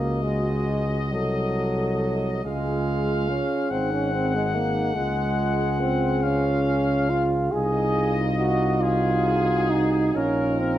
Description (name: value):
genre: classical, hymn-like piece for brass band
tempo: 47 BPM (dotted quarters)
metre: 6/8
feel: uneven beats, rubato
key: Db major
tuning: A4 = 440 Hz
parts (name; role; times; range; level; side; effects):
- clear trumpet section; melody; 0.0-10.8 s; Ab4 to Gb5; -30 LUFS; left 5 dB; none
- mellow French horn section; second line; 0.0-10.8 s; Eb4 to A4; -30 LUFS; right 6 dB; none
- clear euphonium; accompaniment; 0.0-10.8 s; F4 to A4; -32 LUFS; left 3 dB; none
- warm trombone; accompaniment; 0.0-10.8 s; Gb3 to Ab4; -25 LUFS; right 1 dB; none
- mellow tuba; bass; 0.0-10.8 s; Ab1 to Db2; -26 LUFS; left 1 dB; none
room: moderate recital hall reverb, RT60 1.7 s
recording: dark, warm production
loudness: -21 LUFS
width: side -12 dB against mid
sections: 0.0-10.8 A section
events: none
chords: 0.0 Ebm7/Db; 1.1 Cdim7; 2.5 Db; 3.7 Ab5; 5.0 Db; 7.5 Ab/C; 10.2 Bbm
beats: 1.13 | 2.45 3.71 | 4.96 6.23 | 7.52 8.82 | 10.15